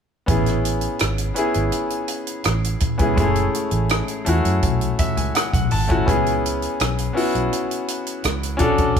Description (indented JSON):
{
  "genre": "lush 1970s-style soul",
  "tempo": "83 BPM",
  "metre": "4/4",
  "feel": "straight",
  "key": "unclear",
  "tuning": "A4 = 437 Hz",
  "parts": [
    { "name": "clear baby grand piano", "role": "accompaniment", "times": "0.3-9.0 s", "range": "G#3 to A5", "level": "-22 LUFS", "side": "left 2 dB", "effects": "none" },
    { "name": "vintage muted fingered electric bass", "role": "bass", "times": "0.3-9.0 s", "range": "F#1 to F#2", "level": "-23 LUFS", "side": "right 1 dB", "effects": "none" },
    { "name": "compact cocktail drum kit", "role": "drums", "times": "0.3-9.0 s", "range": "hi-hat, kick drum, rim click", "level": "-22 LUFS", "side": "right 1 dB", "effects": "none" }
  ],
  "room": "moderate large studio reverb, RT60 1.3 s",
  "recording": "band playing live in one room",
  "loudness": "-18 LUFS",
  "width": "side -7 dB against mid",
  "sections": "0.3-9.0 A section",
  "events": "grand piano fill 4.6-6.1",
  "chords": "0.3 Amaj7; 3.2 F#m7; 6.1 C#m7"
}